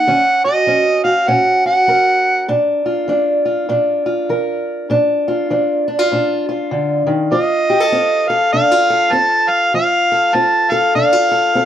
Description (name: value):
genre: acoustic country blues, solo or duo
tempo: 99 BPM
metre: 4/4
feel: swing 61% on 8ths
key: Bb major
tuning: A4 = 441 Hz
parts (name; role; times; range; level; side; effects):
- overdriven harmonica; melody; 0.0-2.5, 7.3-11.7 s; Eb5 to A5; -13 LUFS; right 1 dB; none
- fingerpicked steel-string acoustic guitar; accompaniment; 0.0-11.7 s; Bb2 to Bb4; -16 LUFS; equal; none
room: light reverb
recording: none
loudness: -13 LUFS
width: side -10 dB against mid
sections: 0.0-11.7 A section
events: none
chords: 0.1 Ebm7; 2.5 Bb; 7.3 F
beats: | 0.08 0.69 1.29 1.89 | 2.49 3.10 3.70 4.30 | 4.91 5.51 6.11 6.72 | 7.32 7.92 8.53 9.13 | 9.74 10.34 10.95 11.55